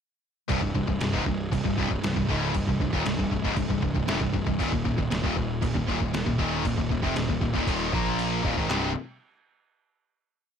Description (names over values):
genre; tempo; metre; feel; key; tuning
heavy metal; 117 BPM; 4/4; straight; C minor; A4 = 440 Hz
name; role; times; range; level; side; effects
distorted electric guitar; riff; 0.5-8.9 s; C2 to Bb3; -32 LUFS; equal; overdrive
high-gain distorted guitar; riff; 0.5-8.9 s; C2 to Bb3; -30 LUFS; left 11 dB; distortion
sludgy distorted guitar; riff; 0.5-8.9 s; C2 to Bb3; -31 LUFS; right 10 dB; overdrive
fuzz picked electric bass; bass; 0.5-8.9 s; C1 to Bb1; -32 LUFS; equal; overdrive
trip hop sampler-style drum kit; drums; 0.5-8.8 s; crash cymbal, handclaps, kick drum, snare drum; -30 LUFS; equal; none
room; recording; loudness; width
little or no reverb; none; -24 LUFS; side -7 dB against mid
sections
0.5-8.7 riff; 8.7-10.6 final chord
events
kick and snare drop out 8.2-8.7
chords
0.5 C5; 4.6 Eb5; 7.9 Bb5; 8.4 Eb5; 8.7 C5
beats
| 0.49 1.01 1.52 2.04 | 2.55 3.06 3.57 4.09 | 4.60 5.11 5.62 6.13 | 6.65 7.16 7.67 8.19 | 8.70